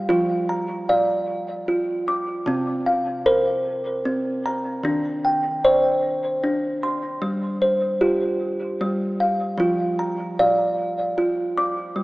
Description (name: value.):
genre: world meditative, meditative tuned percussion.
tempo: 51 BPM (dotted quarters).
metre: 6/8.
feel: straight.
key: unclear.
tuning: A4 = 440 Hz.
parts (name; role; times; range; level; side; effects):
kalimba; solo; 0.0-12.0 s; C3 to D6; -20 LUFS; equal; diffuse ambient delay.
room: wet echo chamber reverb, RT60 2.7 s.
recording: AM radio sound.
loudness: -20 LUFS.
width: side -20 dB against mid.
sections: 0.0-12.0 A section.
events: none.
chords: 0.1 Bb/F; 2.5 C9sus4; 4.8 Eb; 7.2 G7sus4; 9.6 Bb/F.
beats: | 0.10 1.29 | 2.47 3.65 | 4.84 6.03 | 7.21 8.40 | 9.59 10.78 | 11.96.